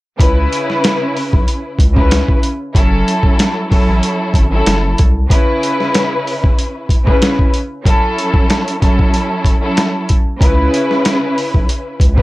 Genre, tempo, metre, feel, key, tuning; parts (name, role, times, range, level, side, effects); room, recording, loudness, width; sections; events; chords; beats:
hip hop, boom-bap hip-hop; 94 BPM; 4/4; swing 55% on 16ths; C# minor; A4 = 442 Hz
warm symphonic string section; accompaniment; 0.2-12.2 s; C#3 to B4; -16 LUFS; equal; cassette tape, high-pass filter, low-pass filter
round analog bass; bass; 0.2-5.3, 10.4-12.2 s; F#1 to C#2; -15 LUFS; equal
boom bap sampler-style drum kit; drums; 0.2-12.2 s; hi-hat, kick drum, snare drum; -13 LUFS; equal
light reverb; -11 LUFS; side -19 dB against mid
0.2-12.2 A section
0.2 C#m7; 2.7 F#m7; 5.3 C#m7; 7.9 F#m7; 10.4 C#m7
| 0.20 0.83 1.47 2.11 | 2.75 3.39 4.03 4.66 | 5.30 5.94 6.58 7.22 | 7.86 8.49 9.13 9.77 | 10.41 11.05 11.69